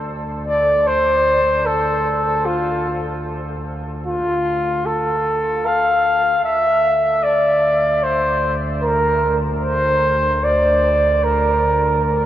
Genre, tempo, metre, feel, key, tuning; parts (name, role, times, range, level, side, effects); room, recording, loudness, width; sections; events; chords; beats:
ambient; 75 BPM; 4/4; straight; D minor; A4 = 442 Hz
warm studio double bass section; bass; 0.0-12.3 s; D2; -25 LUFS; equal
warm flugelhorn; melody; 0.5-12.3 s; F4 to F5; -16 LUFS; equal; tape echo
wet huge ambient reverb, RT60 7.4 s; worn, warbling old tape, cassette tape, warbly pitch drift; -15 LUFS; side -12 dB against mid
0.0-12.3 A section
fade-in on double bass section 0.0-12.3
| 0.05 0.85 1.65 2.45 | 3.25 4.05 4.85 5.65 | 6.45 7.25 8.05 8.85 | 9.65 10.45 11.25 12.05